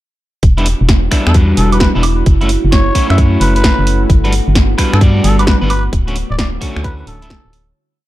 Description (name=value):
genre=UK garage, two-step garage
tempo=131 BPM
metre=4/4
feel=swing 66% on 16ths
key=E dorian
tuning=A4 = 440 Hz
part: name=airy breathy pad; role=sustained chords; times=0.4-7.7 s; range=G3 to F#4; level=-26 LUFS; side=left 1 dB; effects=none
part: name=organ-like FM bass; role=bass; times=0.4-7.7 s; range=D1 to G2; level=-13 LUFS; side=equal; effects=tube saturation
part: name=electronic kick drum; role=drums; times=0.4-7.4 s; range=none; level=-12 LUFS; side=equal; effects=none
part: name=punchy analog drum machine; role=drums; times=0.4-7.7 s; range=finger snaps, hi-hat, snare drum, woodblock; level=-18 LUFS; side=right 1 dB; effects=overdrive
part: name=deep dark ambient pad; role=texture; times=1.0-7.8 s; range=D3 to F#5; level=-24 LUFS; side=right 2 dB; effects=chorus, built-in reverb, sidechain pumping
part: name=electric guitar at the edge of break-up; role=stabs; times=0.6-7.3 s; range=D3 to D5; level=-19 LUFS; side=equal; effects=spring reverb
part: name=trumpet with cup mute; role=melody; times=1.3-7.7 s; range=A4 to E5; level=-21 LUFS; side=equal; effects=ping-pong delay
room=little or no reverb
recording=dark, warm production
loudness=-10 LUFS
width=side -15 dB against mid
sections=0.4-7.8 drop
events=drop 0.4-7.8; fade-out 5.3-7.8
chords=0.4 Em7; 2.3 F#m7; 4.1 Gmaj7; 5.9 Dmaj7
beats=| 0.43 0.89 1.35 1.80 | 2.26 2.72 3.18 3.64 | 4.09 4.55 5.01 5.47 | 5.93 6.38 6.84 7.30